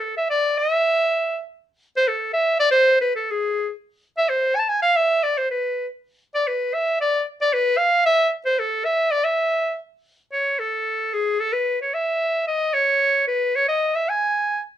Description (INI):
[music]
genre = klezmer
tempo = 112 BPM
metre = 2/4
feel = straight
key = E phrygian dominant, C# minor from 10.3 s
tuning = A4 = 440 Hz
[part]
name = clear clarinet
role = solo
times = 0.0-14.6 s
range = G#4 to A5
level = -18 LUFS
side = equal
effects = none
[sound]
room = moderate studio reverb, RT60 0.5 s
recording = minimal, uncompressed stereo recording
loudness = -19 LUFS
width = side -11 dB against mid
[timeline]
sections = 0.0-1.7 A section; 1.7-10.3 A section; 10.3-14.8 B section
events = none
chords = none